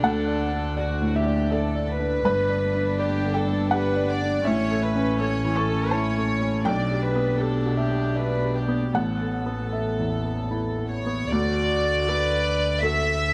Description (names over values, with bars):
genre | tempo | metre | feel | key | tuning
neoclassical piano and strings | 74-83 BPM | 3/4 | rubato | D major | A4 = 440 Hz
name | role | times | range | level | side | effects
warm studio violin section | melody | 0.0-13.3 s | F#4 to E5 | -30 LUFS | equal | none
dark viola | accompaniment | 0.0-13.3 s | B3 to B4 | -32 LUFS | equal | none
felt-muted upright piano | accompaniment | 0.0-13.3 s | A1 to C#6 | -28 LUFS | equal | none
warm double bass | bass | 0.0-13.3 s | G1 to D2 | -30 LUFS | equal | none
room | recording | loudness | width
light reverb | close, detailed microphones | -24 LUFS | mono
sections
0.0-11.3 A section; 11.3-13.3 B section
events
none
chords
0.0 D; 2.3 G; 4.5 A; 6.7 G/B; 8.9 Asus2; 11.3 D